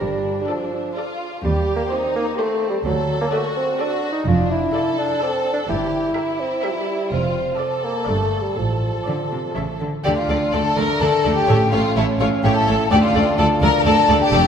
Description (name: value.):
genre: cinematic, playful, whimsical film cue.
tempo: 126 BPM.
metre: 3/4.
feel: straight.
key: D minor from 4.3 s.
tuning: A4 = 440 Hz.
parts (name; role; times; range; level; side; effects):
rich studio violin section; second line; 0.0-14.5 s; C4 to Bb4; -24 LUFS; left 2 dB; none.
mellow bassoon; accompaniment; 0.0-14.5 s; F3 to F4; -23 LUFS; right 1 dB; none.
rich studio cello section; bass; 0.0-14.4 s; D2 to D3; -24 LUFS; right 2 dB; none.
warm studio double bass section; bass; 0.0-14.4 s; F1 to Eb2; -25 LUFS; right 2 dB; none.
rich studio violin section; melody; 0.5-14.4 s; C5 to E5; -30 LUFS; left 2 dB; none.
rich studio viola section; accompaniment; 0.5-14.4 s; A3 to D5; -26 LUFS; equal; none.
celesta; melody; 10.1-14.5 s; E5 to Bb5; -26 LUFS; left 4 dB; none.
mellow concert flute; second line; 10.1-14.5 s; E5 to Bb5; -24 LUFS; left 2 dB; none.
dark French horn section; sustained chords; 10.1-14.5 s; A3 to D4; -24 LUFS; equal; none.
room: wet scoring stage reverb, RT60 2.0 s.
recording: none.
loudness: -17 LUFS.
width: side -7 dB against mid.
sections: 0.0-10.1 A section; 10.1-14.5 B section.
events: none.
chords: 0.0 Dm/G; 1.4 Cm/Eb; 2.9 D; 4.3 Dm/F; 5.7 Edim/G; 7.1 Dm/F; 8.1 Gm; 8.6 Dm/A; 9.6 A; 10.1 D5; 11.5 A; 12.9 Dm.